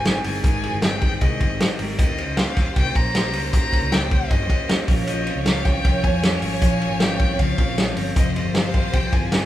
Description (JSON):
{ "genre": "jangly indie pop", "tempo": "155 BPM", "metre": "4/4", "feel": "straight", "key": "Ab major", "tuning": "A4 = 441 Hz", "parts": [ { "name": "warm violin", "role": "melody", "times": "0.0-9.5 s", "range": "Eb5 to Bb5", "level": "-28 LUFS", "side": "left 3 dB", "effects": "none" }, { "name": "electric guitar through a small old amp", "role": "accompaniment", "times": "0.0-9.5 s", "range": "F2 to G4", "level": "-32 LUFS", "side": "right 4 dB", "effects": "spring reverb" }, { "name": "twelve-string electric guitar", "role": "arpeggios", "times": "0.0-9.5 s", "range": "Eb3 to G4", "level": "-28 LUFS", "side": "left 3 dB", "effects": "phaser" }, { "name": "vintage muted fingered electric bass", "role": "bass", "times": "0.0-9.5 s", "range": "F1 to G2", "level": "-28 LUFS", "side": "equal", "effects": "none" }, { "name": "bright symphonic violin section", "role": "second line", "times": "0.1-9.5 s", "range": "G4 to Db5", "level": "-31 LUFS", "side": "right 3 dB", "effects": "none" }, { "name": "loose indie drum kit", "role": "drums", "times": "0.1-9.4 s", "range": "hi-hat, kick drum, ride cymbal, snare drum", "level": "-20 LUFS", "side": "equal", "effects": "none" } ], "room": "light reverb", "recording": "band playing live in one room", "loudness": "-18 LUFS", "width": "side -13 dB against mid", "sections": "0.0-9.5 A section", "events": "none", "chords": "0.0 Abmaj7; 2.0 Eb7; 4.9 Bbmadd9; 8.2 Fsus2", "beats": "0.05 | 0.44 0.82 1.21 1.60 | 1.98 2.37 2.76 3.14 | 3.53 3.92 4.30 4.69 | 5.08 5.46 5.85 6.23 | 6.62 7.00 7.39 7.78 | 8.16 8.55 8.93 9.32" }